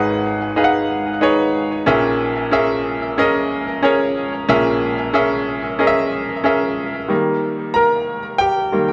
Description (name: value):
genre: pop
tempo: 92 BPM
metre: 4/4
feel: straight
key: unclear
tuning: A4 = 440 Hz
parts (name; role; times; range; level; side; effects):
- bright grand piano; solo; 0.0-8.9 s; G#1 to A#5; -18 LUFS; equal; tape echo
room: moderate large studio reverb, RT60 0.9 s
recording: worn, warbling old tape, cassette tape, warbly pitch drift, nothing above 10.7 kHz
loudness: -18 LUFS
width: mono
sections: 0.0-7.1 A section; 7.1-8.9 B section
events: grand piano solo 7.1-8.9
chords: 0.0 G#m7; 1.9 A#m7b5; 7.1 D#